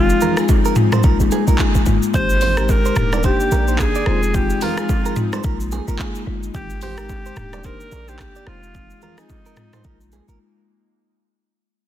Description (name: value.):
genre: afrobeats.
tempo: 109 BPM.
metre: 4/4.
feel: swing 58% on 16ths.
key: unclear.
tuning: A4 = 440 Hz.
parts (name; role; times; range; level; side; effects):
breathy alto saxophone; melody; 0.0-10.3 s; Eb4 to C5; -24 LUFS; equal; tape echo.
marimba with soft mallets; accompaniment; 0.0-10.4 s; Ab3 to G4; -23 LUFS; left 7 dB; none.
airy breathy pad; sustained chords; 0.0-10.9 s; Eb3 to D5; -29 LUFS; equal; chorus.
warm 808-style bass; bass; 0.0-10.4 s; Eb1 to Bb1; -20 LUFS; equal; none.
afro-pop drum kit; drums; 0.1-10.4 s; handclaps, hi-hat, kick drum, rim click, shaker, toms; -20 LUFS; equal; soft clipping on snare.
direct-recorded clean electric guitar; riff; 0.2-10.4 s; Ab4 to D5; -28 LUFS; right 10 dB; tape echo.
congas and bongos; percussion; 0.2-10.3 s; none; -30 LUFS; right 8 dB; none.
room: light reverb.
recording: dense, heavily limited modern master.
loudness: -15 LUFS.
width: side -11 dB against mid.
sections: 0.0-10.9 A section.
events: fade-out 0.0-10.9; break 10.4-10.9.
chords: 0.0 Fm7; 1.0 Bb7sus4; 2.1 Abmaj7; 3.0 Ebmaj7; 4.1 Fm7; 5.4 Bb7sus4; 6.5 Abmaj7; 7.4 Ebmaj7; 8.5 Fm7; 9.8 Bb7sus4.